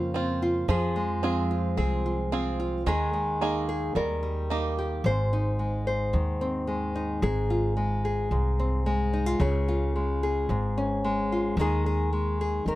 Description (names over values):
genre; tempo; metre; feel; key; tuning
acoustic folk duo or small band; 110 BPM; 4/4; straight; Ab major; A4 = 438 Hz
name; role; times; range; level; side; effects
nylon-string guitar; accompaniment; 0.0-12.8 s; Ab2 to C5; -27 LUFS; left 1 dB; none
bluegrass banjo; arpeggios; 0.0-5.1 s; F3 to Ab4; -32 LUFS; right 5 dB; none
upright bass; bass; 0.0-12.8 s; Ab1 to F2; -28 LUFS; equal; none
room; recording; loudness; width
little or no reverb; close, detailed microphones; -24 LUFS; side -16 dB against mid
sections
0.0-5.0 A section; 5.0-12.8 B section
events
none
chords
0.0 Bbmadd9; 0.7 Fm; 2.9 Ebsus4; 4.0 Eb; 5.0 Ab; 7.2 Fm/Ab; 9.4 Db; 11.6 Ebsus4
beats
0.14 | 0.69 1.24 1.78 2.32 | 2.87 3.41 3.96 4.50 | 5.05 5.59 6.13 6.68 | 7.22 7.77 8.31 8.86 | 9.40 9.94 10.49 11.03 | 11.57 12.12 12.66